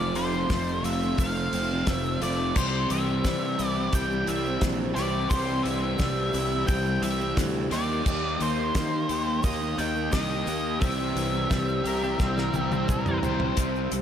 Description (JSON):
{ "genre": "classic rock", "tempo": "87 BPM", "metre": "4/4", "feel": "straight", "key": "C mixolydian", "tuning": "A4 = 440 Hz", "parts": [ { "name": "octave-fuzz lead guitar", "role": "melody", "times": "0.0-13.2 s", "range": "C5 to G5", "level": "-31 LUFS", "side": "equal", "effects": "distortion, slapback echo" }, { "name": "picked steel-string acoustic guitar", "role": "accompaniment", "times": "0.0-13.6 s", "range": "F2 to G4", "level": "-35 LUFS", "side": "left 2 dB", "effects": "none" }, { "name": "mellow tonewheel organ", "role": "sustained chords", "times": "0.0-14.0 s", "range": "C4 to F5", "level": "-39 LUFS", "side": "right 1 dB", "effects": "none" }, { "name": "overdriven electric guitar", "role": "riff", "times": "0.0-14.0 s", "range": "F2 to G4", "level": "-32 LUFS", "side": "left 9 dB", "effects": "spring reverb" }, { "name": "overdriven electric guitar", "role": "riff", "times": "0.0-14.0 s", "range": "F2 to G4", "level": "-32 LUFS", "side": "right 10 dB", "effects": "slapback echo" }, { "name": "fuzz fingered electric bass", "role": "bass", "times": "0.0-14.0 s", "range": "F1 to Eb3", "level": "-31 LUFS", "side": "equal", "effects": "overdrive" }, { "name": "damped 70s drum kit", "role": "drums", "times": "0.2-14.0 s", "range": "crash cymbal, hi-hat, kick drum, snare drum, toms", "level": "-30 LUFS", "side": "equal", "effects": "none" }, { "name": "egg shaker", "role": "percussion", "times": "0.2-14.0 s", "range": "none", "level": "-45 LUFS", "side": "right 6 dB", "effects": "none" }, { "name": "octave-fuzz lead guitar", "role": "second line", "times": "11.9-13.6 s", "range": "C4 to C5", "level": "-33 LUFS", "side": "left 4 dB", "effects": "distortion, slapback echo" } ], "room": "moderate concert hall reverb, RT60 2.2 s", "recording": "big arena sound", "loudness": "-24 LUFS", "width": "side -9 dB against mid", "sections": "0.0-13.6 A section", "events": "drum fill 12.2-13.6", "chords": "0.0 F; 2.6 C; 7.7 Eb; 10.8 C" }